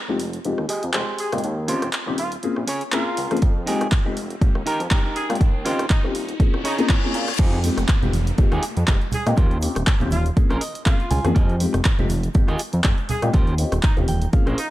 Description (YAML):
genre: filtered disco house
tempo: 121 BPM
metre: 4/4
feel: swing 55% on 16ths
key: F minor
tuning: A4 = 440 Hz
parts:
  - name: riser, reverse cymbal and downlifter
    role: sound effects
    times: 2.0-11.4 s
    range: none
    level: -33 LUFS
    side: left 1 dB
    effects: none
  - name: dark baby grand piano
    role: accompaniment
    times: 0.1-14.5 s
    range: Ab3 to Ab4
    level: -27 LUFS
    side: left 4 dB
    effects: phaser, vintage 12-bit sampler grit, sidechain pumping, low-pass filter
  - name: semi-hollow electric guitar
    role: riff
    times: 0.1-14.7 s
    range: Db4 to Ab5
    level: -28 LUFS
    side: right 2 dB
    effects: sidechain pumping, low-pass filter
  - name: fat analog bass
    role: bass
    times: 0.1-14.5 s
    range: Eb1 to Bb2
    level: -24 LUFS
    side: equal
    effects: sidechain pumping, high-pass filter, low-pass filter
  - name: punchy analog drum machine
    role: drums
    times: 0.2-14.7 s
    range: crash cymbal, handclaps, hi-hat, rim click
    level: -28 LUFS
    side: equal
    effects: overdrive, sidechain pumping on hats, high-pass filter on hats, studio reverb, high-pass filter on snare, sidechain pumping on cymbals, high-pass filter on cymbals
  - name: warm horn section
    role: melody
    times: 1.2-14.7 s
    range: Eb4 to Ab4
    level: -31 LUFS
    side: equal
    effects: vintage 12-bit sampler grit, sidechain pumping, low-pass filter, digital delay
  - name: electronic kick drum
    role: drums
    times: 3.4-14.4 s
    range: none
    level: -18 LUFS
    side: equal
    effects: studio reverb
  - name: tube shaker and congas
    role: percussion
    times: 7.4-14.7 s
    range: none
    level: -28 LUFS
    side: right 3 dB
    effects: sidechain pumping on perc, low-pass filter on perc
room: digital ambience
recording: dark, warm production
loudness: -18 LUFS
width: side -15 dB against mid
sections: 0.0-7.4 A section; 7.4-14.7 B section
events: build-up 0.0-7.4; filter sweep 0.0-7.4; riser 2.0-7.4; reverse cymbal 6.4-7.4; drop 7.4-14.7; clean electric guitar fill 10.4-11.4, 13.8-14.7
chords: 0.0 Fm9; 1.4 Eb13; 2.4 Bbm9; 3.4 Fm9; 5.4 Eb13; 6.4 Bbm9; 7.4 Fm9; 9.4 Eb13; 10.4 Bbm9; 11.4 Fm9; 13.3 Eb13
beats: 0.45 0.94 | 1.44 1.94 2.43 2.93 | 3.42 3.92 4.42 4.91 | 5.41 5.90 6.40 6.90 | 7.39 7.89 8.38 8.88 | 9.38 9.87 10.37 10.86 | 11.36 11.85 12.35 12.85 | 13.34 13.84 14.33